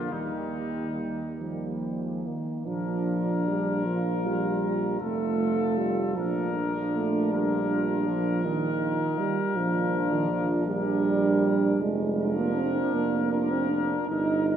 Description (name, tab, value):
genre	classical, hymn-like piece for brass band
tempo	46-54 BPM (dotted quarters)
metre	6/8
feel	rubato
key	Bb major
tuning	A4 = 445 Hz
part	mellow trumpet section	melody	0.0-14.6 s	Eb4 to Bb4	-35 LUFS	left 6 dB	none
part	dark French horn section	second line	0.0-14.6 s	Bb3 to F4	-34 LUFS	right 6 dB	none
part	bright trombone section	accompaniment	0.0-14.6 s	G3 to F4	-32 LUFS	left 1 dB	none
part	mellow euphonium	accompaniment	0.0-14.6 s	D3 to Eb4	-28 LUFS	right 3 dB	none
part	warm tuba	bass	0.0-14.6 s	F1 to Eb2	-32 LUFS	equal	none
room	wet church reverb, RT60 3.1 s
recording	none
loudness	-24 LUFS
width	side -9 dB against mid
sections	0.0-2.7 A section; 2.7-14.6 B section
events	none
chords	0.1 Eb; 2.7 Bb; 5.0 F; 6.2 Bb; 7.3 Eb/Bb; 11.8 Bb/F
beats	| 0.12 1.41 | 2.67 3.86 | 5.01 6.16 | 7.31 8.44 | 9.55 10.66 | 11.79 12.93 | 14.08